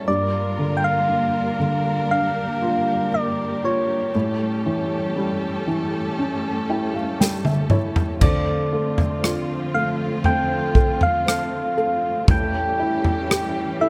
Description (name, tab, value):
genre	pop ballad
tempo	59 BPM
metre	4/4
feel	straight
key	D harmonic minor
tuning	A4 = 440 Hz
part	felt-muted upright piano	accompaniment	0.0-13.9 s	G2 to G5	-28 LUFS	equal	none
part	warm symphonic string section	sustained chords	0.0-13.9 s	D3 to Bb4	-30 LUFS	equal	none
part	soft struck synth lead	melody	0.1-13.9 s	C#5 to G5	-26 LUFS	equal	chorus
part	natural country drum kit	drums	7.2-13.5 s	crash cymbal, kick drum, rim click, snare drum, toms	-22 LUFS	equal	none
part	flamenco guitar	arpeggios	8.2-13.9 s	A2 to A4	-32 LUFS	equal	none
room	little or no reverb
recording	none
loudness	-22 LUFS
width	mono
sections	0.0-8.2 A section; 8.2-13.9 B section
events	felt piano fill 6.2-8.2; drum fill 7.2-8.2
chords	0.1 Gm7; 4.1 A7; 8.2 Dm7; 12.3 A7